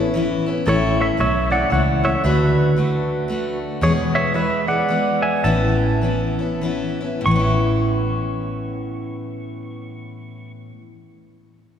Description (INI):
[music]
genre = honky-tonk and classic country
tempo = 91-114 BPM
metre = 3/4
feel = swing 62% on 8ths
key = A major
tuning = A4 = 440 Hz
[part]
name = pedal steel guitar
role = melody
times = 0.0-10.5 s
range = F#4 to C#6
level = -22 LUFS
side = right 1 dB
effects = none
[part]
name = picked steel-string acoustic guitar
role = accompaniment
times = 0.0-10.9 s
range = E2 to G#4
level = -22 LUFS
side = left 2 dB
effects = none
[part]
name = vintage muted fingered electric bass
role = bass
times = 0.0-10.5 s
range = A1 to E2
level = -22 LUFS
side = right 1 dB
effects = none
[sound]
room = wet church reverb, RT60 3.1 s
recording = recorded in a church or concert hall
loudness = -17 LUFS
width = side -8 dB against mid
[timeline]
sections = 0.7-7.3 A section; 7.3-11.2 B section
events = slowing down 3.8-7.3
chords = 0.0 Aadd9; 2.2 D; 3.8 E; 5.4 Aadd9